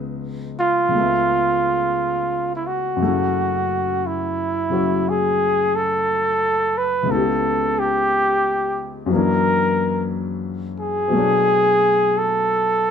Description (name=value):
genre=jazz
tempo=59 BPM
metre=4/4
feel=swing 66% on 8ths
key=C# minor, F# minor from 3.0 s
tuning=A4 = 443 Hz
part: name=warm concert grand piano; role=accompaniment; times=0.0-12.9 s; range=C#2 to E5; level=-23 LUFS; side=left 4 dB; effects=none
part: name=warm flugelhorn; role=melody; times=0.6-12.9 s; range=E4 to B4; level=-18 LUFS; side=right 1 dB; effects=none
room=wet studio reverb, RT60 0.9 s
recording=band playing live in one room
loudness=-17 LUFS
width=side -7 dB against mid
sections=0.0-3.0 A section; 3.0-12.9 B section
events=none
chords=0.0 C#m9; 0.9 C#7alt; 3.0 F#m7; 7.1 C#m7b5; 9.1 F#aug7; 11.1 Bm9